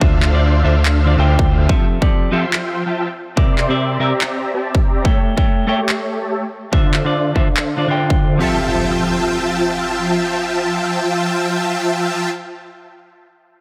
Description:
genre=future bass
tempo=143 BPM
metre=4/4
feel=swing 55% on 16ths, half-time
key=F major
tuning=A4 = 441 Hz
part: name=clean electric guitar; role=accompaniment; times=0.0-12.3 s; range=C3 to G5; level=-23 LUFS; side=equal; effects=vintage 12-bit sampler grit, sidechain pumping, dub echo
part: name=supersaw chords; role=riff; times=0.0-12.3 s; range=D3 to C#6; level=-22 LUFS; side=equal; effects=ensemble chorus, sidechain pumping, low-pass filter, dub echo
part: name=saturated sub bass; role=bass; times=0.0-1.7 s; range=D2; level=-17 LUFS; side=equal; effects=sidechain pumping
part: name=electronic kick drum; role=drums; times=0.0-8.2 s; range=none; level=-18 LUFS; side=equal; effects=studio reverb
part: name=electronic handclaps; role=drums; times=0.2-7.7 s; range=none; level=-24 LUFS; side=equal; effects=studio reverb
part: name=impact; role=sound effects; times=8.4-12.3 s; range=none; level=-30 LUFS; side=equal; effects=none
room=light reverb, digital ambience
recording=none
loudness=-17 LUFS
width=mono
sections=0.0-8.4 A section; 8.4-11.8 B section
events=filter sweep on supersaw synth 0.0-8.4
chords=0.0 Dm7; 1.7 Fmaj7; 3.2 C9; 5.0 A7; 6.7 Dm7; 8.4 Fmaj7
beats=| 0.01 0.43 0.85 1.27 | 1.69 2.11 2.53 2.95 | 3.37 3.79 4.21 4.63 | 5.05 5.47 5.89 6.31 | 6.73 7.15 7.57 7.99 | 8.40 8.82 9.24 9.66 | 10.08 10.50 10.92 11.34

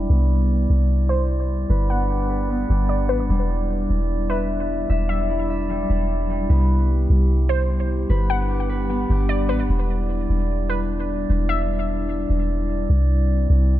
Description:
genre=hip hop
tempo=150 BPM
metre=4/4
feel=half-time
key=E minor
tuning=A4 = 440 Hz
part: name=glass harmonica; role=sustained chords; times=0.0-13.8 s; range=G3 to F#5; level=-26 LUFS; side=equal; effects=low-pass filter
part: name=concert harp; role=arpeggios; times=0.0-12.6 s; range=G3 to E5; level=-29 LUFS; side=left 1 dB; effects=low-pass filter, digital delay
part: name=soft 808-style bass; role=bass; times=0.0-13.8 s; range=E1 to C2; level=-20 LUFS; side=equal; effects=none
part: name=warbly dusty pluck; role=melody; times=1.1-12.5 s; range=B4 to F#5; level=-30 LUFS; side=left 1 dB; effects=chorus, phaser, low-pass filter, digital delay
room=small room reverb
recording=dark, warm production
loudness=-19 LUFS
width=side -14 dB against mid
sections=0.0-9.7 A section; 9.7-13.8 B section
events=filter sweep 0.0-9.7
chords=0.1 Cmaj7; 1.7 Gmaj7; 3.3 Em7; 6.5 Cmaj7; 8.1 Gmaj7; 9.7 Em7; 12.9 C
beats=| 0.10 0.50 0.90 1.30 | 1.70 2.10 2.50 2.90 | 3.30 3.70 4.10 4.50 | 4.90 5.30 5.70 6.10 | 6.50 6.90 7.30 7.70 | 8.10 8.50 8.90 9.30 | 9.70 10.10 10.50 10.90 | 11.30 11.70 12.10 12.50 | 12.90 13.30 13.70

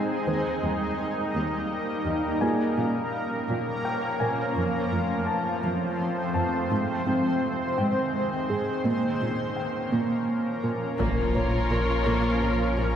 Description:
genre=cinematic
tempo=56 BPM (dotted quarters)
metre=6/8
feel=straight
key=Bb dorian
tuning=A4 = 440 Hz
part: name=granular cloud pad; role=sustained chords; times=0.0-13.0 s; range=Eb3 to C5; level=-27 LUFS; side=equal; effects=built-in reverb
part: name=harp-like synth pluck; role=arpeggios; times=0.0-13.0 s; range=Eb3 to Bb4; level=-31 LUFS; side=right 2 dB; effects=chorus, tape echo
part: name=clear baby grand piano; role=texture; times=0.0-13.0 s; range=Ab4 to A5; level=-35 LUFS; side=left 2 dB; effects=tape echo
part: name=dark symphonic cello section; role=bass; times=0.3-12.9 s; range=Eb2 to Bb2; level=-33 LUFS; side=right 1 dB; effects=none
part: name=warm symphonic violin section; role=second line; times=11.0-13.0 s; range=Bb4 to Db5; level=-30 LUFS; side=left 2 dB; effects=none
part: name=warm symphonic viola section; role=accompaniment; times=11.0-13.0 s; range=F3 to F4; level=-31 LUFS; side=left 1 dB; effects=none
part: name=punchy sub bass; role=bass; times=11.0-13.0 s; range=Bb1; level=-29 LUFS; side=equal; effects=none
part: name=rich symphonic double bass section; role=bass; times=11.0-12.9 s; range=Bb1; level=-33 LUFS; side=equal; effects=none
part: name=impact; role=sound effects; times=11.0-13.0 s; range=none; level=-35 LUFS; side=equal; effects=none
room=wet concert hall reverb, RT60 1.9 s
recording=heard from further back in the room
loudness=-24 LUFS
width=side -9 dB against mid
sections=0.0-11.0 A section; 11.0-13.0 B section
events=impact 11.0-13.0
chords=0.3 Eb; 2.4 Bbm; 4.6 F; 6.7 Ab; 8.9 Bbm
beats=| 0.28 1.35 | 2.42 3.49 | 4.57 5.64 | 6.71 7.78 | 8.85 9.92 | 10.99 12.06

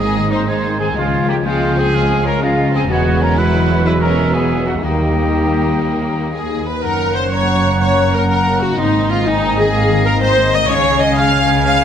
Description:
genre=cinematic, heroic adventure film score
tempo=124 BPM (dotted quarters)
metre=12/8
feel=straight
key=Ab major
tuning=A4 = 442 Hz
part: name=rich studio violin section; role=melody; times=0.0-11.8 s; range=Ab3 to F5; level=-23 LUFS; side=left 4 dB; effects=none
part: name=clear oboe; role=second line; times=0.0-11.8 s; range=Eb5 to Bb5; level=-25 LUFS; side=right 3 dB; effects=none
part: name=mellow clarinet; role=second line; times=0.0-11.8 s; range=Ab3 to Db4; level=-26 LUFS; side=equal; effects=none
part: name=rich chamber violin section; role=second line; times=0.0-11.8 s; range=Ab3 to F5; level=-26 LUFS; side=left 2 dB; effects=none
part: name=silver concert flute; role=second line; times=0.0-11.8 s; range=Db5 to Eb6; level=-26 LUFS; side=left 1 dB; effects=none
part: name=rich studio viola section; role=accompaniment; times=0.0-11.8 s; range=Eb3 to F5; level=-19 LUFS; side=equal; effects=none
part: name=mellow French horn section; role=sustained chords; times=0.0-11.8 s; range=Ab3 to F#4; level=-25 LUFS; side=left 4 dB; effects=none
part: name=concert harp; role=arpeggios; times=0.0-11.8 s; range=Gb2 to Bb4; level=-23 LUFS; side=left 10 dB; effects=none
part: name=warm trumpet section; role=stabs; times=0.0-11.8 s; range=F4 to Ab5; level=-22 LUFS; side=right 2 dB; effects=none
part: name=clear symphonic cello section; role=bass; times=0.0-11.8 s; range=Db2 to Db3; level=-22 LUFS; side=right 3 dB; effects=none
part: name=warm symphonic double bass section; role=bass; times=0.0-11.8 s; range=E1 to Eb2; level=-21 LUFS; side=right 3 dB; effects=none
room=moderate scoring stage reverb, RT60 1.4 s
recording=none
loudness=-13 LUFS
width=side -8 dB against mid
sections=0.0-6.8 A section; 6.8-11.8 A section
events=none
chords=0.0 Abadd9; 1.0 Db; 2.9 Eadd9; 4.8 Eb; 6.8 Gb; 8.8 Abadd9; 10.7 Db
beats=0.48 | 0.97 1.45 1.93 2.42 | 2.90 3.38 3.85 4.34 | 4.83 5.33 5.83 6.33 | 6.83 7.32 7.80 8.29 | 8.78 9.26 9.74 10.22 | 10.70 11.18 11.66

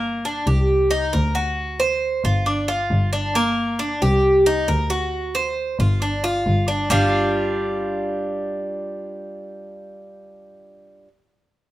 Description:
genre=latin, Cuban son and guajira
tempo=135 BPM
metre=4/4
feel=straight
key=G minor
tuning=A4 = 440 Hz
part: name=Cuban tres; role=arpeggios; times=0.0-11.1 s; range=G3 to C5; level=-20 LUFS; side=equal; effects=none
part: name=warm double bass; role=bass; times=0.0-11.1 s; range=G1 to D2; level=-22 LUFS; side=equal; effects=none
room=light reverb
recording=none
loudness=-18 LUFS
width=side -15 dB against mid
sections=0.0-6.9 A section; 6.9-10.5 B section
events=none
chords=0.0 Gm; 0.7 Cm7; 1.6 D7; 2.5 Gm7; 4.2 Cm7; 5.1 D7; 6.0 G5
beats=0.25 0.69 1.13 | 1.58 2.02 2.47 2.91 | 3.35 3.80 4.24 4.69 | 5.13 5.57 6.02 6.46 | 6.91 7.35 7.79 8.24 | 8.68 9.13 9.57 10.02

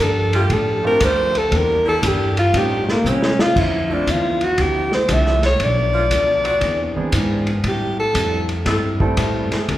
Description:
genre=jazz, big band swing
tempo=118 BPM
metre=4/4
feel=swing 67% on 8ths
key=D minor from 3.6 s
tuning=A4 = 436 Hz
part: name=breathy alto saxophone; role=melody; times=0.0-8.5 s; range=Bb3 to E5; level=-18 LUFS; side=equal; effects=none
part: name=hollow-body jazz guitar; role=accompaniment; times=0.0-9.8 s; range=A2 to A#4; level=-27 LUFS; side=left 3 dB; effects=none
part: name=upright bass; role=bass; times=0.0-9.8 s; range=B1 to B#2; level=-22 LUFS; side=equal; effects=none
part: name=edgy saxophone section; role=sustained chords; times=0.3-9.8 s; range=C#3 to A4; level=-28 LUFS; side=right 1 dB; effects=none
part: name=vintage drum kit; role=drums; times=0.3-9.8 s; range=crash cymbal, hi-hat, kick drum, ride cymbal, snare drum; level=-24 LUFS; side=equal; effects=none
part: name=clear baby grand piano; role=accompaniment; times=0.8-9.7 s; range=E3 to A4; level=-26 LUFS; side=right 2 dB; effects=none
room=wet recital hall reverb, RT60 1.7 s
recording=heard from further back in the room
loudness=-16 LUFS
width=side -14 dB against mid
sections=0.0-3.6 A section; 3.6-9.8 A section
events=alto saxophone solo 0.0-9.8; drum fill 3.0-3.6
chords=0.0 F69; 1.5 Em7b5; 2.5 A7alt; 3.6 Dm9; 5.6 Bm7b5; 6.6 E7b13; 7.6 Am7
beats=0.50 1.01 | 1.52 2.03 2.54 3.05 | 3.56 4.07 4.58 5.09 | 5.60 6.11 6.62 7.13 | 7.64 8.15 8.66 9.18 | 9.69

